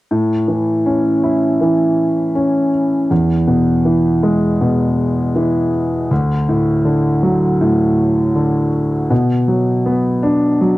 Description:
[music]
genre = pop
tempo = 80 BPM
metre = 4/4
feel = straight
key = A major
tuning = A4 = 440 Hz
[part]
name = warm concert grand piano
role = accompaniment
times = 0.1-10.8 s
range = D2 to E4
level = -13 LUFS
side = equal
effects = cassette tape
[sound]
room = wet booth ambience, RT60 0.2 s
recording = home recording on cassette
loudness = -13 LUFS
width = side -17 dB against mid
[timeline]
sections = 0.1-10.8 A section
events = grand piano fill 10.6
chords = 0.1 A; 3.1 E; 6.1 D; 9.1 Bm

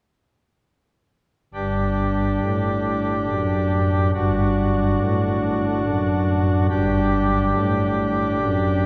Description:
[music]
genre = classical, chorale-style piece for pipe organ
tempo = 70 BPM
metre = 3/4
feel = rubato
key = unclear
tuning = A4 = 440 Hz
[part]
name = pipe organ, cornet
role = solo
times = 1.5-8.9 s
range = G1 to G4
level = -21 LUFS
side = equal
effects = none
[sound]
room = wet cathedral reverb, RT60 5.0 s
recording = dark, warm production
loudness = -21 LUFS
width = mono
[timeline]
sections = 1.5-8.9 A section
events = none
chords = 1.5 D/G

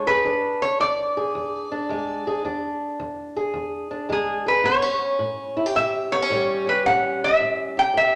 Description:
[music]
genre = acoustic country blues, solo or duo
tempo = 109 BPM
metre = 4/4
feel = swing 66% on 8ths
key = E mixolydian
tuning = A4 = 438 Hz
[part]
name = lap resonator guitar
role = melody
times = 0.0-8.2 s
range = G#4 to G5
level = -23 LUFS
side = equal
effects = none
[part]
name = fingerpicked old ladder-braced acoustic guitar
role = accompaniment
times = 0.0-8.2 s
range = E2 to G#4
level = -28 LUFS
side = equal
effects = none
[sound]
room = wet large studio reverb, RT60 1.3 s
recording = none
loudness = -23 LUFS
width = mono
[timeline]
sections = 0.0-8.2 A section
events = none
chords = 0.0 E7; 4.7 A7

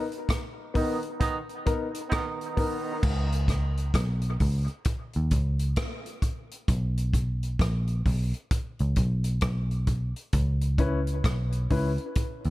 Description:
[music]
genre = dub reggae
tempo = 66 BPM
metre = 4/4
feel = swing 62% on 16ths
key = unclear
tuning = A4 = 440 Hz
[part]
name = warm upright piano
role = stabs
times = 0.0-2.8, 10.8-11.9 s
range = B3 to B4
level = -32 LUFS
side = left 4 dB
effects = dub echo
[part]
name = vintage drum kit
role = drums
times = 0.1-12.5 s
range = crash cymbal, hi-hat, kick drum, rim click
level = -28 LUFS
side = equal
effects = none
[part]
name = bright trombone section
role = second line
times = 0.8-3.0 s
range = D#3 to D#4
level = -33 LUFS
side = right 4 dB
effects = dub echo
[part]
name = vintage muted picked electric bass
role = bass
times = 3.0-12.5 s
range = A#1 to D#2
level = -26 LUFS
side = equal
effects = none
[sound]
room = small room ambience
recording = echo-heavy mix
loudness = -25 LUFS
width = side -18 dB against mid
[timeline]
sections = 0.0-3.0 A section; 3.0-12.5 B section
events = band accent 0.0-3.0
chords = 0.0 Bmaj7; 3.0 N.C.; 10.3 C#m7

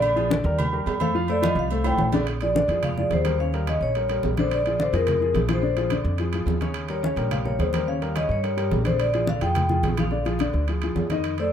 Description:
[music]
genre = Afro-Cuban jazz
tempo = 214 BPM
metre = 4/4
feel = straight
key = Bb mixolydian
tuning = A4 = 440 Hz
[part]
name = vibraphone with medium mallets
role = melody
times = 0.0-11.5 s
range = Bb4 to G5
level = -25 LUFS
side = left 1 dB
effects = plate reverb
[part]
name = warm grand piano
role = accompaniment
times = 0.0-11.5 s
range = Db3 to F5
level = -27 LUFS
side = left 3 dB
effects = none
[part]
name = upright bass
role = bass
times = 0.0-11.5 s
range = Bb1 to G2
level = -26 LUFS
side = equal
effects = none
[part]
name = agogo bells and timbales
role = percussion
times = 0.0-11.5 s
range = none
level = -31 LUFS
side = right 6 dB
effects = none
[part]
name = congas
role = percussion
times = 0.0-11.5 s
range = none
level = -29 LUFS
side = equal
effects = none
[sound]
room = light reverb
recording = none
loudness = -21 LUFS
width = side -9 dB against mid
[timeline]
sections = 0.0-2.3 A section; 2.3-11.5 B section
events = vibraphone solo 0.0-2.3; drum fill 1.8-2.3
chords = 0.0 Bb6; 0.6 Eb69; 1.1 F6; 2.3 Bb13; 3.4 Eb9; 4.5 Bb9; 6.8 Eb7; 9.0 Bb

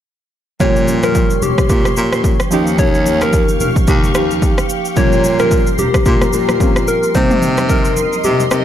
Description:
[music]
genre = amapiano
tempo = 110 BPM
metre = 4/4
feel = swing 58% on 16ths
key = Bb dorian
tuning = A4 = 437 Hz
[part]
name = soft struck synth lead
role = melody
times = 0.6-8.6 s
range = G4 to Db5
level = -18 LUFS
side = left 2 dB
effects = chorus, digital delay
[part]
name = warm analog keys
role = accompaniment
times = 0.6-8.6 s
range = F3 to G4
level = -20 LUFS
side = right 2 dB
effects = chorus
[part]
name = ensemble organ-string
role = sustained chords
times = 0.6-8.6 s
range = G4 to Db6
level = -22 LUFS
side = equal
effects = phaser, ensemble chorus, sidechain pumping
[part]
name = breathy baritone saxophone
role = bass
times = 0.6-8.6 s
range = Eb2 to C3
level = -18 LUFS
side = equal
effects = none
[part]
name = deep house drum kit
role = drums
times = 0.6-8.6 s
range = kick drum, rim click, shaker, toms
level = -16 LUFS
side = equal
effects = overdrive
[part]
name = congas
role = percussion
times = 0.6-8.5 s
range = none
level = -24 LUFS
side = left 1 dB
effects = none
[sound]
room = digital ambience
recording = dark, warm production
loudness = -12 LUFS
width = side -10 dB against mid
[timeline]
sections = 0.6-8.6 A section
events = kick muted 8.2-8.6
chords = 0.6 Bbm69; 2.5 Eb9; 5.0 Bbm69; 7.2 Cm7

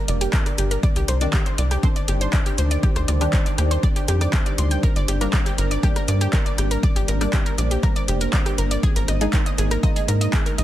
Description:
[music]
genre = melodic techno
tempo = 120 BPM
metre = 4/4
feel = straight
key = G phrygian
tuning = A4 = 439 Hz
[part]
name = deep dark ambient pad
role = sustained chords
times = 0.0-10.6 s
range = Eb3 to Eb5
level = -28 LUFS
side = equal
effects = chorus, built-in reverb, sidechain pumping
[part]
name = analog pluck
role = arpeggios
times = 0.0-10.6 s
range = G4 to G6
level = -29 LUFS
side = equal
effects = chorus, sidechain pumping, dub echo
[part]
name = tight sequencer bass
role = bass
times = 0.1-10.6 s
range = F1 to Ab2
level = -21 LUFS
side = equal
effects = sidechain pumping
[part]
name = deep house drum kit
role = drums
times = 0.1-10.6 s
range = handclaps, hi-hat, rim click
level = -28 LUFS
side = equal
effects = overdrive, small room ambience
[part]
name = electronic kick drum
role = drums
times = 0.3-10.4 s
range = none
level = -20 LUFS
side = equal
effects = overdrive, small room ambience
[part]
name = filtered dub chord stab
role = stabs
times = 1.2-10.6 s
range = Eb3 to Eb4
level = -31 LUFS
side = left 1 dB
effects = phaser, lush chorus, sidechain pumping, dub echo
[sound]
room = digital ambience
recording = dense, heavily limited modern master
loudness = -18 LUFS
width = side -13 dB against mid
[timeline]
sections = 0.0-10.6 A section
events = none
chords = 0.0 Gm; 0.8 Cmadd9; 4.8 Gm; 8.8 Absus2

